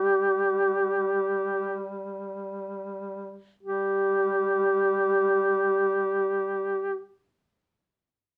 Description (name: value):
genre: caucasian folk, Caucasian lament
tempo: free time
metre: none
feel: none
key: unclear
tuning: A4 = 439 Hz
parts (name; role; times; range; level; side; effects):
- mellow duduk; melody; 0.0-7.0 s; G4; -26 LUFS; equal; none
- mellow duduk; drone; 0.0-7.0 s; G3; -36 LUFS; equal; none
room: light reverb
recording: band playing live in one room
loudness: -26 LUFS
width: mono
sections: 0.0-3.6 A section; 3.6-8.4 B section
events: slowing down 0.0-3.6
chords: none